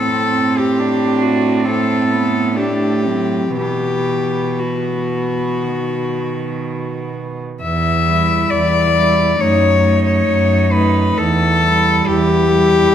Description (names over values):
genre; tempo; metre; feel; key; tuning
classical, lyrical piece for cello ensemble; 57-71 BPM; 4/4; rubato; E minor; A4 = 440 Hz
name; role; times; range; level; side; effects
clear cello; melody; 0.0-12.9 s; F#4 to E5; -17 LUFS; left 4 dB; none
rich cello; second line; 0.0-12.9 s; D#3 to E4; -23 LUFS; right 7 dB; none
dark cello; accompaniment; 0.0-12.9 s; G3 to D4; -21 LUFS; equal; none
rich cello; bass; 0.0-12.9 s; E2 to B2; -19 LUFS; right 2 dB; none
room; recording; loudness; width
moderate scoring stage reverb, RT60 1.6 s; none; -14 LUFS; side -9 dB against mid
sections
0.0-7.6 A section; 7.6-12.9 B section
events
none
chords
0.0 F#dim/A; 3.6 Bsus4; 7.6 Em; 9.4 D#dim/F#; 11.2 Em